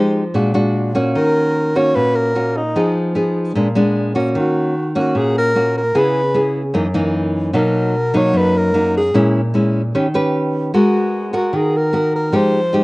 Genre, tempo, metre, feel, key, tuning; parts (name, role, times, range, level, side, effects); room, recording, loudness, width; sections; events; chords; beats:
bossa nova; 150 BPM; 4/4; straight; Eb minor; A4 = 438 Hz
breathy alto saxophone; melody; 0.0-12.8 s; Eb4 to Db5; -18 LUFS; equal
nylon-string guitar; accompaniment; 0.0-12.8 s; Gb2 to B4; -16 LUFS; equal
little or no reverb; recorded outdoors, with no room sound, nothing above 10.5 kHz; -14 LUFS; side -22 dB against mid
0.0-4.3 A section; 4.3-12.8 A section
0.4 Bb7alt; 1.2 Ebm7; 2.8 Fm7b5; 3.5 Bb7b9; 4.3 Ebm7; 5.9 Dbm7; 6.7 Gb6; 7.5 Bmaj7; 9.1 Bbm7b5; 9.9 Ebaug7; 10.7 Abm9; 12.3 Fm9
0.35 0.75 | 1.15 1.55 1.95 2.35 | 2.75 3.15 3.55 3.95 | 4.35 4.75 5.15 5.55 | 5.95 6.35 6.75 7.14 | 7.54 7.94 8.34 8.74 | 9.14 9.54 9.94 10.34 | 10.74 11.14 11.54 11.94 | 12.33 12.73